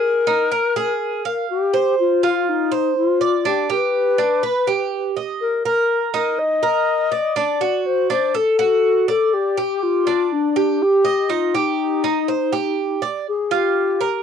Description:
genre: latin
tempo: 122 BPM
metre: 4/4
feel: straight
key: unclear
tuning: A4 = 440 Hz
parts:
  - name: mellow wooden-headed alto flute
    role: melody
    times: 0.0-14.2 s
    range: D4 to Eb5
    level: -19 LUFS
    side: left 6 dB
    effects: cassette tape
  - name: Cuban tres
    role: arpeggios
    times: 0.0-14.2 s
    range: D4 to F5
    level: -20 LUFS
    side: right 8 dB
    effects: none
room: wet booth ambience, RT60 0.2 s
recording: home recording on cassette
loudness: -17 LUFS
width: side -8 dB against mid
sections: 0.0-13.3 A section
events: none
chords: 0.0 Absus2; 1.5 F5; 3.4 G; 5.4 Eb5; 7.4 D; 9.3 G5; 11.3 Cm; 13.3 Bb5

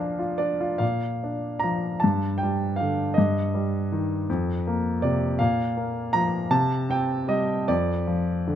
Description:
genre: classical, lyrical solo piano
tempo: 52 BPM (dotted quarters)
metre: 6/8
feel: uneven beats, rubato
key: Bb major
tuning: A4 = 440 Hz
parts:
  - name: warm grand piano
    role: solo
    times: 0.0-8.6 s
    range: F2 to Bb5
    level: -22 LUFS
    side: equal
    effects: none
room: light reverb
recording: close, detailed microphones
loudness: -22 LUFS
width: side -10 dB against mid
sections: 0.8-8.6 A section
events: none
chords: 0.0 Bb; 2.0 G5; 3.2 Eb/G; 4.3 Fsus4; 5.4 Bb5; 6.5 C5; 7.7 Dm/F

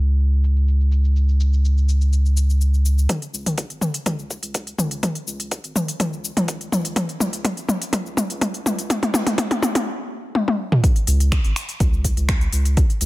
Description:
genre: afro house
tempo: 124 BPM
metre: 4/4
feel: straight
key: unclear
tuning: A4 = 440 Hz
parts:
  - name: round analog bass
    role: bass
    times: 0.0-13.1 s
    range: G#1 to C#2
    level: -19 LUFS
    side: equal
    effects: sidechain pumping, high-pass filter
  - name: deep house drum kit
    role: drums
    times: 0.1-13.1 s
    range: cabasa, finger snaps, hi-hat, toms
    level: -22 LUFS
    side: left 1 dB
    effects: studio reverb
  - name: electronic kick drum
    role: drums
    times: 3.1-12.9 s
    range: none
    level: -20 LUFS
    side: equal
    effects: high-pass filter on kick, studio reverb
room: digital ambience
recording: low-pass filter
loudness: -18 LUFS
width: side -19 dB against mid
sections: 0.0-3.1 A section; 3.1-10.8 B section; 10.8-13.1 C section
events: filter sweep 0.0-3.1; build-up 3.1-10.8; drum fill 3.1-9.9, 10.4-10.8; drop 10.8-13.1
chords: none

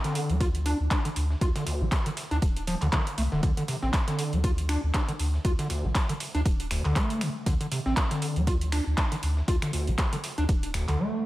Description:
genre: acid house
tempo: 119 BPM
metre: 4/4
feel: swing 56% on 16ths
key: D minor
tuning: A4 = 444 Hz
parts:
  - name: overdriven acid bass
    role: riff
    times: 0.0-11.3 s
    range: D2 to F4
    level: -30 LUFS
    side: equal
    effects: distortion, lush chorus, tape echo
  - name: dusty soul sampler-style drum kit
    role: drums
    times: 0.0-11.0 s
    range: ride cymbal, snare drum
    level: -43 LUFS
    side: right 2 dB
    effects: high-pass filter on snare, sidechain pumping on cymbals, high-pass filter on cymbals
  - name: electro analog drum machine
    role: drums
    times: 0.0-11.0 s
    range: finger snaps, handclaps, hi-hat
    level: -34 LUFS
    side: equal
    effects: none
  - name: warm sub bass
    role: bass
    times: 0.3-11.0 s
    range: D1 to D2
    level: -28 LUFS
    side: equal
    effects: sidechain pumping
  - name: electronic kick drum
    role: drums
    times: 0.4-10.6 s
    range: none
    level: -26 LUFS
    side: equal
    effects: overdrive
room: light reverb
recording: none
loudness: -24 LUFS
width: side -16 dB against mid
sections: 0.0-11.3 A section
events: none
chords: none

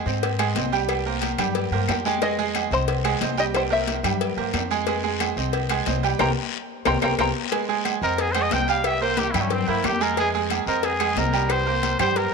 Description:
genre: latin, salsa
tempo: 181 BPM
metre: 4/4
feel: straight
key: F minor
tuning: A4 = 439 Hz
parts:
  - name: bright concert grand piano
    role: accompaniment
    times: 0.1-12.3 s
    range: G3 to Ab5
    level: -26 LUFS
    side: right 11 dB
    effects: none
  - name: upright bass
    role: bass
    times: 0.1-12.3 s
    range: C2 to Ab2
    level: -28 LUFS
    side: left 2 dB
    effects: none
  - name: congas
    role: percussion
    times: 0.1-12.3 s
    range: none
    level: -32 LUFS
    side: left 15 dB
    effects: none
  - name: guiro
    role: percussion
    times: 0.1-12.3 s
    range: none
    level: -34 LUFS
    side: left 17 dB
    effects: none
  - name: agogo bells and timbales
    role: percussion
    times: 0.2-12.2 s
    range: none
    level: -31 LUFS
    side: right 14 dB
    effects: none
  - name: cowbell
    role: percussion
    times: 0.2-12.3 s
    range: none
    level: -30 LUFS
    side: left 16 dB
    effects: none
  - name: claves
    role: percussion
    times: 0.4-12.2 s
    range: none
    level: -34 LUFS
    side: left 16 dB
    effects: none
  - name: open-back banjo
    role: melody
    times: 1.9-4.0, 6.2-7.3 s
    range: G4 to C6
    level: -26 LUFS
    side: left 4 dB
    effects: none
  - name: clear trumpet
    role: melody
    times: 8.0-12.3 s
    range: C4 to G5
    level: -24 LUFS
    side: left 2 dB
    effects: tape echo
room: moderate echo chamber reverb, RT60 2.2 s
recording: 1960s-style stereo with parts hard left and right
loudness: -20 LUFS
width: side -4 dB against mid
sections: 0.0-7.5 A section; 7.5-12.3 B section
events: drum fill 6.2-7.5; band accent 6.2-7.5; trumpet solo 7.5-12.3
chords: 0.0 Fm7 (rootless); 0.9 C5; 2.2 Fm7; 3.5 C7; 4.9 Fm7; 6.2 C5; 7.5 Fm7; 8.8 C5; 10.2 Fm7; 11.5 C5

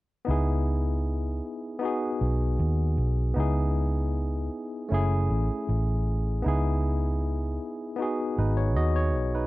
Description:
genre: lovers rock reggae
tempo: 78 BPM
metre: 4/4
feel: straight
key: C# minor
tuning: A4 = 439 Hz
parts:
  - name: barky tine electric piano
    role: accompaniment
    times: 0.2-9.5 s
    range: A3 to D#5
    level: -29 LUFS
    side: left 1 dB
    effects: overdrive, medium stereo tremolo
  - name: vintage muted fingered electric bass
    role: bass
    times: 0.3-9.5 s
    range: F#1 to D#2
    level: -25 LUFS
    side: equal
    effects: none
room: little or no reverb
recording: dry, close 1970s-style studio recording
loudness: -25 LUFS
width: side -18 dB against mid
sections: 0.3-9.5 A section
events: none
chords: 0.3 C#m7; 1.8 G#m7; 3.4 C#m7; 4.9 F#m7; 6.4 C#m7; 8.0 G#m7

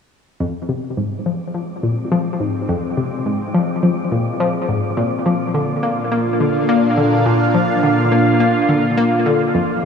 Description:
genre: ambient, sequencer-driven space music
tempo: 105 BPM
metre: 4/4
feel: straight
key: F dorian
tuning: A4 = 440 Hz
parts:
  - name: phased analog pad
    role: sustained chords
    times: 0.4-9.8 s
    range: Bb2 to F5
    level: -18 LUFS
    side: equal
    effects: phaser, chorus
  - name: analog pluck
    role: riff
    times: 0.4-9.6 s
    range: F2 to Bb3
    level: -18 LUFS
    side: left 2 dB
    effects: chorus, analog delay
  - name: wind-like tuned noise texture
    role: texture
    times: 1.4-9.6 s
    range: D5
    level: -31 LUFS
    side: right 2 dB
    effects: built-in reverb
  - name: fat analog bass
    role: bass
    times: 9.5-9.8 s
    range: F1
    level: -49 LUFS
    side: left 4 dB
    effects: none
room: wet huge ambient reverb, RT60 7.8 s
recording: studio reverb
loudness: -15 LUFS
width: side -6 dB against mid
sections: 0.4-9.5 A section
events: fade-in on analog synth pad 0.4-9.5; fade-in on synth texture 0.4-9.5; filter sweep on synth arpeggio sound 0.4-9.5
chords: 0.4 Fm; 5.0 Bb

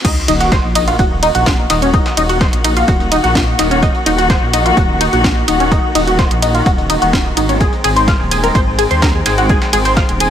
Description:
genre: melodic techno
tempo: 127 BPM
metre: 4/4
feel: straight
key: Eb dorian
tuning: A4 = 440 Hz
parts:
  - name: muted chamber string section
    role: sustained chords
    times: 0.0-10.3 s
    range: Eb3 to Gb4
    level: -18 LUFS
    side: left 3 dB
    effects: sidechain pumping
  - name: tight sequenced synth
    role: arpeggios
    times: 0.0-10.3 s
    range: Db4 to F6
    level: -16 LUFS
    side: equal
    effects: chorus, phaser, sidechain pumping, tape echo
  - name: breakbeat sampler-style drum kit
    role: drums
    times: 0.0-10.3 s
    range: hi-hat, snare drum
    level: -28 LUFS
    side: right 1 dB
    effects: none
  - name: electronic kick drum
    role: drums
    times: 0.0-10.1 s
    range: none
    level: -15 LUFS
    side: equal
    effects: overdrive
  - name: techno drum kit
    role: drums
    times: 0.0-10.3 s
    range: crash cymbal, hi-hat, ride cymbal, snare drum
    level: -21 LUFS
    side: right 1 dB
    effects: overdrive, sidechain pumping on hats, sidechain pumping on cymbals
  - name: sub drop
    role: sound effects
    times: 0.0-1.9 s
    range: none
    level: -24 LUFS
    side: equal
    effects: none
  - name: dark detuned saw bass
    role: bass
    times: 0.3-10.3 s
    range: Eb1 to Eb2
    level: -18 LUFS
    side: equal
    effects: sidechain pumping
room: light reverb, digital ambience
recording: high-pass filter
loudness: -11 LUFS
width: side -9 dB against mid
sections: 0.0-10.3 A section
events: drop 0.0-10.3; impact 0.0-1.9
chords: 0.0 Ebm; 7.6 Ab

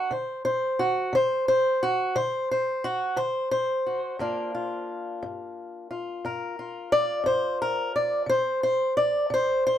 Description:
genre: acoustic country blues, solo or duo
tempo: 59 BPM (dotted quarters)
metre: 12/8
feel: straight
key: G minor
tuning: A4 = 440 Hz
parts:
  - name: fingerpicked swing-style acoustic guitar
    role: solo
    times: 0.0-9.8 s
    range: G2 to D5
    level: -24 LUFS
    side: equal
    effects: none
room: moderate studio reverb, RT60 0.5 s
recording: dark, warm production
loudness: -24 LUFS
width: side -10 dB against mid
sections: 0.0-9.8 A section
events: steel-string acoustic guitar solo 0.0-9.8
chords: 0.1 D7; 4.2 Gm7; 8.3 N.C.

